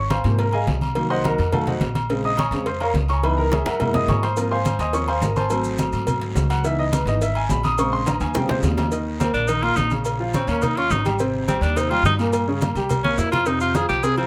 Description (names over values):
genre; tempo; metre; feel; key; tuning
Afro-Cuban jazz; 211 BPM; 4/4; straight; Ab major, Eb major from 8.9 s; A4 = 440 Hz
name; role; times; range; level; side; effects
clear grand piano; accompaniment; 0.0-14.3 s; Bb2 to Eb6; -26 LUFS; equal; none
upright bass; bass; 0.0-14.3 s; Ab1 to Ab2; -27 LUFS; equal; none
congas; percussion; 0.1-14.3 s; none; -29 LUFS; equal; none
cowbell and bongos; percussion; 0.1-14.2 s; none; -32 LUFS; equal; none
guiro; percussion; 0.1-14.3 s; none; -41 LUFS; equal; none
timbales and agogo bells; percussion; 0.1-14.3 s; none; -32 LUFS; equal; none
maracas; percussion; 4.4-14.2 s; none; -42 LUFS; equal; none
bright tenor saxophone; melody; 9.2-14.3 s; C4 to Ab4; -24 LUFS; equal; plate reverb
room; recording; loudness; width
moderate club reverb, RT60 0.6 s; none; -21 LUFS; mono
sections
0.0-8.9 A section; 8.9-14.3 A section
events
grand piano solo 0.0-8.9; drum fill 3.5-4.4, 8.1-8.9, 13.0-13.5; tenor saxophone solo 8.9-14.3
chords
0.0 Ab6; 1.0 Cm7b5; 1.5 F7b9; 2.1 Bbm7; 3.2 Dbm7; 3.8 Gb9; 4.4 Ab6; 5.5 Ab7b9; 6.6 Dbm9; 7.8 Bbm9; 8.4 Eb13; 8.9 Eb5; 10.1 Bbm; 10.6 Eb7; 11.2 Abmaj9; 12.3 Gdim; 12.9 C5; 13.5 F5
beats
0.10 0.39 0.67 | 0.96 1.24 1.53 1.81 | 2.10 2.38 2.67 2.95 | 3.24 3.52 3.81 4.09 | 4.38 4.66 4.94 5.23 | 5.51 5.80 6.08 6.37 | 6.65 6.93 7.22 7.50 | 7.79 8.07 8.35 8.64 | 8.92 9.21 9.49 9.78 | 10.06 10.34 10.63 10.91 | 11.20 11.48 11.77 12.05 | 12.34 12.62 12.90 13.19 | 13.47 13.76 14.04